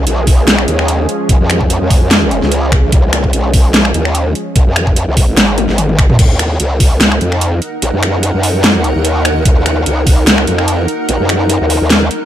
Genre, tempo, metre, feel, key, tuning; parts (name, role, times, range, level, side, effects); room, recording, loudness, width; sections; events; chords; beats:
heavy wobble dubstep; 147 BPM; 4/4; swing 54% on 16ths, half-time; Eb minor; A4 = 440 Hz
supersaw pad; sustained chords; 0.0-6.2 s; F3 to Ab4; -20 LUFS; equal; sidechain pumping, low-pass filter
growl bass; bass; 0.0-12.1 s; Ab1 to Gb2; -14 LUFS; equal; chorus, overdrive
dubstep drum kit; drums; 0.1-12.2 s; crash cymbal, finger snaps, hi-hat, snare drum, toms; -14 LUFS; equal
electronic kick drum; drums; 0.3-6.9, 9.5-10.2 s; -10 LUFS; equal
granular cloud pad; texture; 7.3-12.3 s; Eb4 to Gb5; -18 LUFS; equal; built-in reverb, sidechain pumping
digital ambience; -9 LUFS; side -11 dB against mid
0.0-6.2 A section; 6.2-12.3 A section
drop 0.0-6.2, 6.2-12.3; drum fill 5.6-6.2
0.0 Db; 6.2 Ebm
0.07 0.47 0.88 | 1.29 1.70 2.11 2.52 | 2.92 3.33 3.74 4.15 | 4.56 4.96 5.37 5.78 | 6.19 6.60 7.01 7.41 | 7.82 8.23 8.64 9.05 | 9.46 9.86 10.27 10.68 | 11.09 11.50 11.90